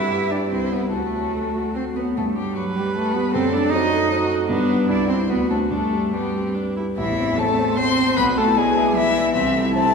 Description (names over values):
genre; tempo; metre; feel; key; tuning
quick classical-period movement for piano quartet; 139-157 BPM; 3/4; rubato; G major; A4 = 440 Hz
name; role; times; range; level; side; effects
warm violin; melody; 0.0-9.9 s; F#4 to C6; -24 LUFS; left 6 dB; none
rich cello; second line; 0.0-9.9 s; E3 to E4; -23 LUFS; right 2 dB; none
clear viola; accompaniment; 0.0-9.9 s; B3 to C5; -26 LUFS; right 3 dB; none
warm grand piano; accompaniment; 0.0-9.9 s; A1 to D6; -23 LUFS; equal; none
room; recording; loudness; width
wet concert hall reverb, RT60 2.0 s; heard from further back in the room; -18 LUFS; side -5 dB against mid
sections
0.0-7.0 A section; 7.0-9.9 B section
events
none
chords
0.0 G; 0.5 C; 0.9 D; 2.2 G; 3.3 F#dim7; 4.5 G; 4.9 Cmaj7; 5.3 D7; 5.7 G; 7.0 Am; 8.2 E7/B; 9.4 Am/C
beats
0.12 0.52 | 0.93 1.34 1.76 | 2.17 2.56 2.96 | 3.35 3.74 4.12 | 4.51 4.90 5.30 | 5.72 6.15 6.57 | 6.98 7.38 7.78 | 8.17 8.57 8.97 | 9.35 9.74